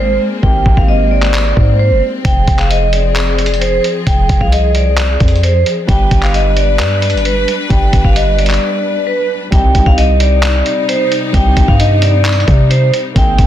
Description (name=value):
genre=hip hop, trap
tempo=132 BPM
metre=4/4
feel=half-time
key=C minor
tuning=A4 = 440 Hz
part: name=vibraphone with hard mallets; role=melody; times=0.0-13.5 s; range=B4 to G5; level=-16 LUFS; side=moving between left 2 dB and right 4 dB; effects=auto-pan, low-pass filter, digital delay
part: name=dark concert grand piano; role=accompaniment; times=0.0-2.3, 5.9-13.5 s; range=G3 to Ab4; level=-23 LUFS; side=right 2 dB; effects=low-pass filter
part: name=clear symphonic string section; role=sustained chords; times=0.0-13.5 s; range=C3 to B4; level=-20 LUFS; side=left 4 dB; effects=none
part: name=hard-hitting 808-style bass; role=bass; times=0.0-13.5 s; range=F1 to C3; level=-13 LUFS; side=equal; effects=none
part: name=lo-fi sampler-style drum kit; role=drums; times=0.4-13.5 s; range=handclaps, hi-hat, kick drum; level=-14 LUFS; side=equal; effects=soft clipping on snare
room=small room ambience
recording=dense, heavily limited modern master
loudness=-9 LUFS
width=side -11 dB against mid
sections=0.0-9.5 A section; 9.5-13.5 B section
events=break 0.0-2.2, 8.6-9.5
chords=0.0 Abadd9; 2.2 Fm; 5.9 G; 9.5 Cm